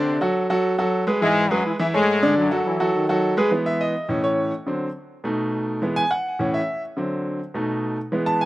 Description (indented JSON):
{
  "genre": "latin",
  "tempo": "208 BPM",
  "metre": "4/4",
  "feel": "straight",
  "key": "E major",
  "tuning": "A4 = 440 Hz",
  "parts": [
    { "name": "bright trombone section", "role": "melody", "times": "0.0-3.4 s", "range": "F#2 to E4", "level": "-21 LUFS", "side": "left 2 dB", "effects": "none" },
    { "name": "bright grand piano", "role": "accompaniment", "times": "0.0-8.5 s", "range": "A2 to A5", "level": "-20 LUFS", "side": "equal", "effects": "none" }
  ],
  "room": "little or no reverb",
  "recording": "recorded outdoors, with no room sound",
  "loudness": "-20 LUFS",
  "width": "side -16 dB against mid",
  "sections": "0.0-3.5 A section; 3.5-8.5 B section",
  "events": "grand piano solo 3.5-8.5",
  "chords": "0.1 D7; 0.6 B5; 1.2 E; 1.8 A; 2.4 D; 2.9 B7; 3.5 E; 4.1 A; 4.7 D7; 5.2 B7; 5.8 E; 6.4 A; 7.0 D7; 7.5 B7",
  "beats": "| 0.07 0.36 0.64 0.93 | 1.22 1.51 1.79 2.08 | 2.37 2.66 2.94 3.23 | 3.52 3.81 4.09 4.38 | 4.67 4.96 5.25 5.54 | 5.82 6.11 6.40 6.69 | 6.97 7.26 7.55 7.84 | 8.13 8.41"
}